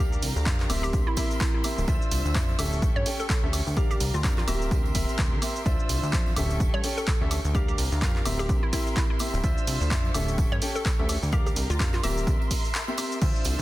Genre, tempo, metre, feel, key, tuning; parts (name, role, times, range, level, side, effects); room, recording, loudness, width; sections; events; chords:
piano house; 127 BPM; 4/4; swing 58% on 16ths; A4 = 440 Hz
hollow square pluck; melody; 0.0-12.3 s; E4 to C#5; -34 LUFS; equal; chorus, tape echo
muted chamber violin section; sustained chords; 0.0-13.6 s; F4 to E6; -39 LUFS; equal; sidechain pumping
clear grand piano; riff; 0.0-13.6 s; C4 to G5; -33 LUFS; left 1 dB; sidechain pumping, tape echo
plucky analog bass; bass; 0.0-13.6 s; D1 to G2; -28 LUFS; equal; tube saturation, sidechain pumping
punchy analog drum machine; drums; 0.1-13.6 s; crash cymbal, handclaps, hi-hat, shaker, woodblock; -32 LUFS; equal
tambourine; percussion; 0.2-13.6 s; -42 LUFS; right 8 dB
electronic kick drum; drums; 0.5-13.3 s; -26 LUFS; equal
digital ambience; dense, heavily limited modern master; -23 LUFS; side -16 dB against mid
0.0-13.6 A section
break 12.7-13.2
0.0 Gm7; 0.9 C7/D; 1.9 Dm9; 2.6 A7/D; 3.8 Gm7; 4.7 C7/D; 5.7 Dm9; 6.4 A7/D; 7.5 Gm7; 8.5 C7/D; 9.4 Dm9; 10.1 A7/D; 11.3 Gm7; 12.3 C7/D